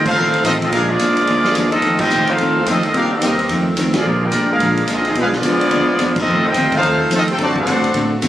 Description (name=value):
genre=jazz, big band swing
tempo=216 BPM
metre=4/4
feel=swing 62% on 8ths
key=unclear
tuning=A4 = 442 Hz
part: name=clear trumpet section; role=melody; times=0.0-8.1 s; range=Bb3 to A5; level=-17 LUFS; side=equal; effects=none
part: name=warm trombone section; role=second line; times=0.0-8.1 s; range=C3 to G4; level=-24 LUFS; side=right 1 dB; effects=none
part: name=vintage hollow-body jazz guitar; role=accompaniment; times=0.0-8.3 s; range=F2 to F#4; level=-21 LUFS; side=left 1 dB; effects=none
part: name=clear saxophone section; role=sustained chords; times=0.0-8.3 s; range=D3 to G4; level=-24 LUFS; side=equal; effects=none
part: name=upright bass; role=bass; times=0.0-8.3 s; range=A1 to A2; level=-26 LUFS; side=right 1 dB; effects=none
part: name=swinging big-band drum kit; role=drums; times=0.1-8.3 s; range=crash cymbal, hi-hat, kick drum, ride cymbal, snare drum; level=-24 LUFS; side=right 1 dB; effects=none
room=light reverb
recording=recorded on a phone in the room, club reverb, compression, lossy compression artefacts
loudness=-14 LUFS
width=side -12 dB against mid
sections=0.0-8.3 A section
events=band accent 0.0, 2.0, 3.9, 6.1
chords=0.0 F7; 0.7 Bb7; 1.8 F7; 2.9 Cm7; 3.5 F7; 4.0 Bb7; 5.2 Bdim7; 6.3 F7; 7.4 D7